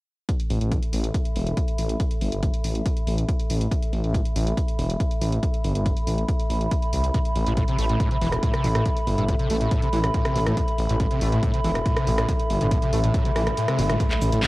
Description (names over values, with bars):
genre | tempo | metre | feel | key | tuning
driving peak-time techno | 140 BPM | 4/4 | straight | A minor | A4 = 442 Hz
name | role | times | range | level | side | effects
electronic kick drum | drums | 0.3-14.5 s | none | -25 LUFS | equal | cassette tape
punchy analog drum machine | drums | 0.3-14.5 s | handclaps, hi-hat, rim click, shaker | -32 LUFS | equal | cassette tape
warbly tape-like pad | texture | 0.8-14.5 s | A4 to B5 | -29 LUFS | equal | chorus, built-in reverb, sidechain pumping
detuned saw bass | bass | 0.5-14.5 s | E1 to C2 | -24 LUFS | equal | sidechain pumping
screaming distorted acid line | riff | 7.1-14.5 s | A1 to A3 | -27 LUFS | equal | distortion, ensemble chorus, sidechain pumping, analog delay
riser and impact | sound effects | 12.4-14.5 s | none | -36 LUFS | equal | none
room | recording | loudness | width
light reverb, digital ambience | home recording on cassette | -21 LUFS | side -19 dB against mid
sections
0.3-14.0 A section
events
kick drops out 13.6-14.0; band accent 13.9; impact 14.0-14.5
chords
0.3 A5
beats
| 0.29 0.71 1.14 1.57 | 2.00 2.43 2.86 3.29 | 3.71 4.14 4.57 5.00 | 5.43 5.86 6.29 6.71 | 7.14 7.57 8.00 8.43 | 8.86 9.29 9.71 10.14 | 10.57 11.00 11.43 11.86 | 12.29 12.71 13.14 13.57 | 14.00 14.43